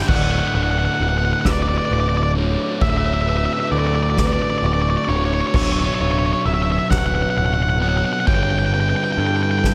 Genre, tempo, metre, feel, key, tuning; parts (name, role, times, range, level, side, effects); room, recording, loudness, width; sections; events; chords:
post-rock; 44 BPM (dotted quarters); 6/8; straight; D major; A4 = 440 Hz
octave-fuzz lead guitar; melody; 0.0-9.7 s; C#5 to G5; -24 LUFS; equal; distortion, analog delay
evolving wavetable pad; sustained chords; 0.1-9.7 s; D3 to C#5; -37 LUFS; equal
vibraphone with soft mallets; arpeggios; 0.0-9.7 s; D4 to C#6; -32 LUFS; equal; analog delay
sludgy distorted guitar; riff; 0.0-9.7 s; D2 to B3; -26 LUFS; equal; overdrive
growling picked electric bass; bass; 0.1-9.7 s; D1 to G2; -24 LUFS; equal; overdrive
soft-mallet drum kit; drums; 0.1-9.7 s; crash cymbal, kick drum, ride cymbal, snare drum; -27 LUFS; equal
light reverb, studio reverb; -19 LUFS; mono
0.1-9.7 A section
0.1 D6; 5.5 Bmadd9/D; 8.3 G6